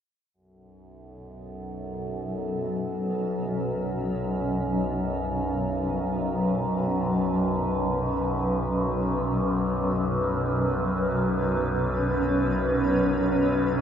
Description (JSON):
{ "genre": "dark ambient drone", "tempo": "free time", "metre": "none", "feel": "none", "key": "unclear", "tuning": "A4 = 445 Hz", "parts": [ { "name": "granular cloud pad", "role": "sustained chords", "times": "2.0-13.8 s", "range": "B2 to B4", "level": "-26 LUFS", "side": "equal", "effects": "built-in reverb" }, { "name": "overtone-sweeping drone", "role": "drone", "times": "1.2-13.8 s", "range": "B1 to F#2", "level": "-27 LUFS", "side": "equal", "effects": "chorus, built-in reverb" } ], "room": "wet huge ambient reverb, RT60 7.8 s", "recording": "dreamy mix soaked in reverb, nothing above 8.0 kHz", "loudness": "-24 LUFS", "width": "side -8 dB against mid", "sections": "0.4-13.8 A section", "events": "none", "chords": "0.4 B5" }